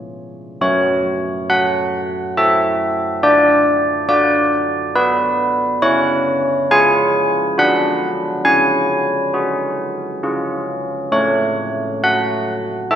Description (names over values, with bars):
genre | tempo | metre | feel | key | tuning
classical, tune for church bells | 68 BPM | 3/4 | straight | F# minor | A4 = 440 Hz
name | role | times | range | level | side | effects
carillon bells | solo | 0.0-13.0 s | F#3 to G#5 | -14 LUFS | equal | none
room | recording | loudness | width
wet concert hall reverb, RT60 2.2 s | heard from further back in the room | -14 LUFS | side -9 dB against mid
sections
0.6-13.0 A section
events
none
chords
0.0 C#; 0.6 F#m; 3.2 Bm/D; 5.8 C#; 7.6 Bm/D; 8.5 C#sus4; 10.2 C#; 11.1 F#m/A